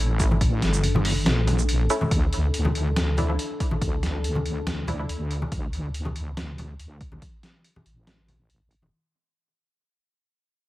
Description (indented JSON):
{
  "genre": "deep dubstep",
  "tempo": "141 BPM",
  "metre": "4/4",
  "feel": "swing 53% on 16ths, half-time",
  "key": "unclear",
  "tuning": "A4 = 438 Hz",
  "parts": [
    { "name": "deep dark ambient pad", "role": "sustained chords", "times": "0.0-9.0 s", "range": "D4 to A4", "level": "-34 LUFS", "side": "left 3 dB", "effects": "chorus, built-in reverb" },
    { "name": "wobble bass", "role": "bass", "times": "0.0-8.9 s", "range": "G1 to D2", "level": "-25 LUFS", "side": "equal", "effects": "chorus, tube saturation" },
    { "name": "electronic kick drum", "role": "drums", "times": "0.2-7.3 s", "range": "none", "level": "-26 LUFS", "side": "equal", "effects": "overdrive" },
    { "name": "trip hop sampler-style drum kit", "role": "drums", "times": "0.2-8.8 s", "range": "hi-hat, shaker, snare drum", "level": "-28 LUFS", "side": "equal", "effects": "none" },
    { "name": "congas", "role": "percussion", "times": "0.3-8.9 s", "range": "none", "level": "-29 LUFS", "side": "left 1 dB", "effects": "none" },
    { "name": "filtered dub chord stab", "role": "stabs", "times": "1.9-5.1 s", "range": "F3 to E4", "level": "-32 LUFS", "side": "equal", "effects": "chorus, dub echo" }
  ],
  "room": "light reverb, digital ambience",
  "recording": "vinyl crackle",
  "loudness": "-22 LUFS",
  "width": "side -17 dB against mid",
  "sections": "0.0-2.1 A section; 2.1-8.9 B section",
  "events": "drop 0.0-2.1; kick drops out 1.7-2.1; fade-out 2.1-8.9",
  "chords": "0.0 N.C.; 2.1 D5"
}